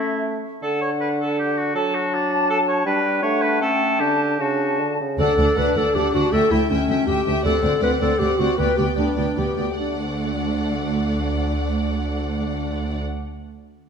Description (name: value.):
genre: quick classical-period movement for symphony orchestra.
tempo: 141-164 BPM.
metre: 3/4.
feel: rubato.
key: D major.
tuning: A4 = 438 Hz.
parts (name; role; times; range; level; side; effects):
clear oboe; second line; 0.0-5.0 s; D4 to C#5; -24 LUFS; right 1 dB; none.
small flute group; second line; 0.0-5.0 s; E5 to A5; -26 LUFS; left 2 dB; none.
warm clarinet; second line; 0.0-13.0 s; C#4 to B4; -24 LUFS; left 1 dB; none.
mellow bassoon; accompaniment; 0.0-5.2 s; C#3 to A3; -24 LUFS; right 1 dB; none.
warm studio violin section; melody; 5.2-13.0 s; F#5 to G5; -32 LUFS; left 1 dB; none.
rich studio violin section; second line; 5.2-13.0 s; D5 to E5; -30 LUFS; left 5 dB; none.
warm studio viola section; accompaniment; 5.2-13.0 s; A3 to D4; -27 LUFS; right 1 dB; none.
warm studio cello section; bass; 5.2-13.0 s; D2; -26 LUFS; right 2 dB; none.
warm studio double bass section; bass; 5.2-13.0 s; D2; -28 LUFS; right 3 dB; none.
room: wet scoring stage reverb, RT60 1.6 s.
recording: none.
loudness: -19 LUFS.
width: side -6 dB against mid.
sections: 0.0-5.2 A section; 5.2-9.8 B section; 9.8-12.2 C section.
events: slowing down 6.9-9.8.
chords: 0.0 A; 0.6 D; 1.7 D/F#; 2.9 G; 3.2 D/A; 4.0 D; 6.3 A7/D; 7.4 D7; 8.6 G/D; 9.8 D.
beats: 0.23 | 0.62 1.00 1.38 | 1.75 2.12 2.49 | 2.86 3.23 3.61 | 4.00 4.40 4.79 | 5.19 5.57 5.95 | 6.33 6.70 7.07 | 7.44 7.81 8.19 | 8.58 8.97 9.38 | 9.79 10.20 10.61 | 11.02 11.43 11.84.